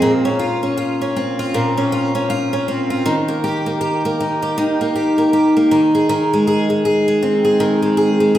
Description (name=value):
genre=pop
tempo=79 BPM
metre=4/4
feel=swing 60% on 16ths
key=Ab major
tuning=A4 = 440 Hz
part: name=picked twelve-string acoustic guitar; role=solo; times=0.0-8.4 s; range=Bb2 to Ab4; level=-14 LUFS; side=equal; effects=none
room=wet recital hall reverb, RT60 1.6 s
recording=recorded in a church or concert hall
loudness=-15 LUFS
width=side -12 dB against mid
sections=0.0-8.4 A section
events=none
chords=0.0 Bbmadd9; 3.1 Eb; 5.7 Ab/Eb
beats=| 0.03 0.79 1.54 2.30 | 3.06 3.81 4.57 5.33 | 6.09 6.84 7.60 8.36